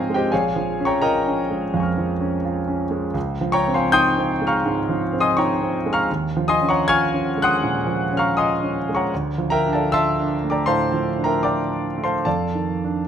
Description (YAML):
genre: classical, impressionist solo piano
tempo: 69-87 BPM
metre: 4/4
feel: rubato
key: unclear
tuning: A4 = 440 Hz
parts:
  - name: clear concert grand piano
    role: solo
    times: 0.0-13.1 s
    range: Bb1 to Ab6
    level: -18 LUFS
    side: equal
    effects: none
room: moderate recital hall reverb, RT60 1.6 s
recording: close, detailed microphones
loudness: -18 LUFS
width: side -8 dB against mid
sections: 0.0-13.1 A section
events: none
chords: 0.3 Bbm7; 3.2 Dbmaj9; 6.1 Ebm11; 9.1 Dm7; 12.3 F13